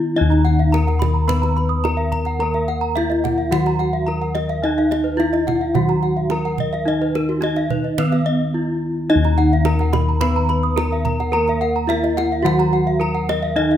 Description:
Balinese gamelan; 108 BPM; 4/4; straight; Eb pelog; A4 = 440 Hz
gamelan-type bronze metallophone; melody; 0.0-13.8 s; Cb4 to Cb5; -22 LUFS; equal
gamelan-type bronze metallophone; accompaniment; 0.0-13.8 s; Eb3 to Cb4; -29 LUFS; equal
gamelan-type bossed gongs; bass; 0.0-13.8 s; Eb2 to Bb4; -20 LUFS; left 1 dB
gamelan-type bronze metallophone; arpeggios; 0.2-13.7 s; Bb4 to Cb6; -24 LUFS; left 3 dB
gamelan-type bronze metallophone; arpeggios; 0.3-13.8 s; Gb4 to Eb6; -27 LUFS; right 6 dB
kendang; percussion; 0.3-13.8 s; -28 LUFS; right 8 dB
light reverb; close, detailed microphones; -16 LUFS; side -10 dB against mid
0.0-9.1 A section; 9.1-13.8 A section
break 0.0, 8.3-9.1

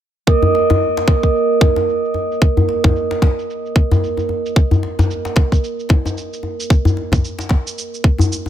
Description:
organic downtempo; 112 BPM; 4/4; swing 59% on 16ths; A4 = 440 Hz
electronic kick drum; drums; 0.3-8.2 s; -12 LUFS; equal
shaker; drums; 0.3-8.4 s; -31 LUFS; right 4 dB; low-pass filter on perc
bronze singing bowl; texture; 0.3-8.5 s; Bb3 to Bb4; -19 LUFS; right 3 dB
djembe; percussion; 0.4-8.5 s; -18 LUFS; left 2 dB
moderate echo chamber reverb, RT60 1.5 s, studio reverb; -14 LUFS; side -10 dB against mid
0.3-8.5 A section
filter sweep on drum 0.3-8.5

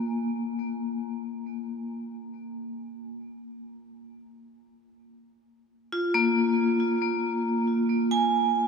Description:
ambient; free time; A4 = 439 Hz
vibraphone with hard mallets; solo; 0.0-8.7 s; Bb3 to Ab5; -25 LUFS; equal; ping-pong delay
wet huge ambient reverb, RT60 8.3 s; -24 LUFS; side -5 dB against mid
0.0-7.2 A section; 7.2-8.7 B section
0.2 N.C.; 3.7 Bb5; 7.2 Fmadd11/Bb

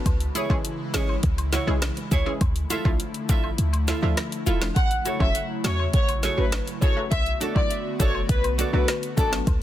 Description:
dancehall; 102 BPM; 4/4; straight; A4 = 440 Hz
analog pluck; accompaniment; 0.0-9.4 s; E3 to A4; -31 LUFS; equal; chorus
airy breathy pad; sustained chords; 0.0-9.6 s; C#3 to F#4; -34 LUFS; left 1 dB; chorus, sidechain pumping
clean 808-style bass; bass; 0.1-9.6 s; E1 to E2; -25 LUFS; equal
afro-pop drum kit; drums; 0.1-9.6 s; hi-hat, kick drum, rim click, snare drum; -25 LUFS; equal; soft clipping on snare
woodblock and cabasa; percussion; 0.1-9.6 s; -39 LUFS; left 3 dB
nylon-string guitar; arpeggios; 0.3-9.4 s; E4 to E5; -31 LUFS; right 5 dB
dark studio violin section; melody; 4.8-9.3 s; A4 to F#5; -28 LUFS; left 2 dB; tape echo
little or no reverb; dense, heavily limited modern master; -21 LUFS; side -12 dB against mid
0.0-9.6 A section
kick muted 3.6-4.8
0.1 C#m; 2.4 Dmadd9; 4.8 A6; 7.1 Bm7

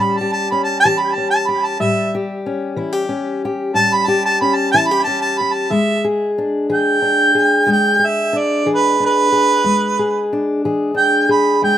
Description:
acoustic country blues, solo or duo; 61 BPM (dotted quarters); 12/8; straight; A4 = 440 Hz
mellow harmonica; melody; 0.0-11.8 s; B4 to B5; -15 LUFS; right 2 dB; slapback echo
fingerpicked steel-string acoustic guitar; accompaniment; 0.0-11.8 s; E2 to G#4; -18 LUFS; left 2 dB; slapback echo
little or no reverb; recorded outdoors, with no room sound; -14 LUFS; side -10 dB against mid
0.0-11.8 A section
harmonica solo 0.0-11.8
0.0 A7; 5.7 E7

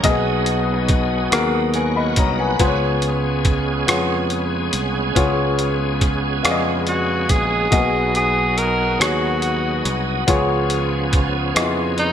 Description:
slow gospel; 47 BPM (dotted quarters); 6/8; straight; A4 = 440 Hz
warm upright piano; accompaniment; 0.0-12.1 s; B2 to B5; -21 LUFS; left 3 dB
bright tonewheel organ; sustained chords; 0.0-12.1 s; D#3 to F#5; -24 LUFS; right 3 dB; slow rotary speaker, chorus vibrato
fingered electric bass; bass; 0.0-12.1 s; A#1 to E#2; -24 LUFS; right 1 dB
trip hop sampler-style drum kit; drums; 0.0-12.1 s; hi-hat, kick drum, rim click; -20 LUFS; equal; gated reverb
clear tenor saxophone; melody; 6.9-12.1 s; D#4 to A#4; -21 LUFS; right 1 dB; ping-pong delay
moderate plate reverb, RT60 1.6 s, digital ambience; bright 1980s-style digital production; -16 LUFS; side -9 dB against mid
0.0-12.1 A section
0.0 G#m7/B; 2.6 C#7; 7.7 G#m7/B; 10.3 C#7

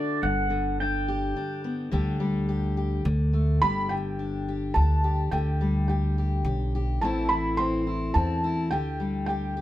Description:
acoustic folk duo or small band; 106 BPM; 3/4; straight; G major; A4 = 440 Hz
pedal steel guitar; second line; 0.0-3.0 s; D5 to G5; -30 LUFS; right 1 dB
fingerpicked steel-string acoustic guitar; accompaniment; 0.0-9.6 s; G2 to G4; -29 LUFS; left 2 dB
upright bass; bass; 0.2-9.6 s; G1 to E2; -26 LUFS; equal
felt-muted upright piano; melody; 3.6-9.6 s; G5 to C6; -29 LUFS; right 1 dB
moderate studio reverb, RT60 0.6 s; band playing live in one room; -24 LUFS; side -14 dB against mid
0.0-3.6 A section; 3.6-9.6 B section
pedal steel guitar solo 0.0-3.6
0.2 G; 1.9 Dsus4; 3.1 D5; 3.6 Gsus2; 5.3 Dsus4; 7.0 Am; 8.7 Dsus4

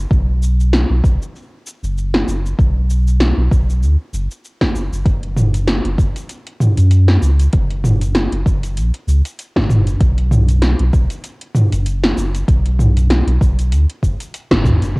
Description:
organic downtempo; 97 BPM; 4/4; swing 56% on 16ths; A4 = 442 Hz
warm sub bass; bass; 0.0-15.0 s; F#1 to F#2; -15 LUFS; equal; sidechain pumping
deep house drum kit; drums; 0.1-15.0 s; hi-hat, shaker, snare drum, toms; -17 LUFS; equal; overdrive, low-pass filter on perc, cassette tape, low-pass filter on snare, low-pass filter on hats, low-pass filter on toms, low-pass filter on room
electronic kick drum; drums; 0.1-14.8 s; -16 LUFS; equal; overdrive, cassette tape
light reverb; home recording on cassette; -13 LUFS; side -27 dB against mid
0.0-15.0 A section
band accent 14.5-14.8

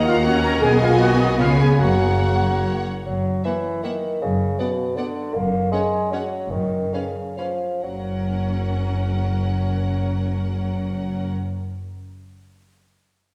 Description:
quick classical-period movement for symphony orchestra; 128-161 BPM; 3/4; rubato; F# major; A4 = 444 Hz
rich studio violin section; melody; 0.0-11.3 s; E#5 to A#5; -37 LUFS; equal
clear oboe; second line; 0.0-2.8 s; D#5 to A#5; -31 LUFS; equal
hollow silver concert flute; second line; 0.0-2.8 s; D#5 to A#5; -31 LUFS; equal
mellow clarinet; second line; 0.0-2.9 s; F#5 to B5; -34 LUFS; equal
rich studio violin section; second line; 0.0-11.3 s; A#4 to F#5; -37 LUFS; equal
rich studio viola section; accompaniment; 0.0-11.3 s; A#3 to C#4; -32 LUFS; equal
warm bassoon; accompaniment; 0.0-11.3 s; B2 to A#3; -29 LUFS; equal
mellow French horn section; sustained chords; 0.0-2.8 s; D#4 to A#4; -24 LUFS; equal
rich studio double bass section; bass; 0.0-11.3 s; F#1 to D#2; -26 LUFS; equal
rich symphonic cello section; bass; 0.0-11.3 s; D#2 to C#3; -28 LUFS; equal
wet recital hall reverb, RT60 1.6 s; heard from further back in the room; -21 LUFS; mono
0.0-3.1 A section; 3.1-7.8 B section; 7.8-10.5 C section
slowing down 4.8-7.8
0.0 D#m; 0.6 G#m7/B; 1.4 C#7; 1.8 F#; 3.1 F#7; 4.2 Bm/F#; 5.3 F#; 6.5 C#/F#; 7.8 F#

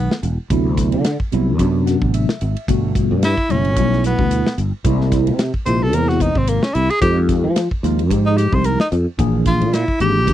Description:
electric jazz fusion; 111 BPM; 4/4; swing 56% on 16ths; A4 = 438 Hz
breathy tenor saxophone; melody; 0.0-10.3 s; Bb3 to C5; -19 LUFS; equal
mellow tine electric piano; accompaniment; 0.0-10.3 s; B2 to F#5; -20 LUFS; equal; medium stereo tremolo, phaser
sustaining fretless electric bass; bass; 0.0-10.3 s; E1 to F3; -18 LUFS; equal; ensemble chorus
modern studio drum kit; drums; 0.1-10.3 s; hi-hat, kick drum, ride cymbal, snare drum; -22 LUFS; equal
little or no reverb; dry, close 1970s-style studio recording; -15 LUFS; side -12 dB against mid
0.0-10.3 A section
tenor saxophone solo 0.0-10.3; tine electric piano fill 1.6-2.7
0.0 Emaj9; 0.5 D13; 2.7 Gmaj9; 4.9 Caug7; 7.0 Fm9; 9.2 Bb7#11

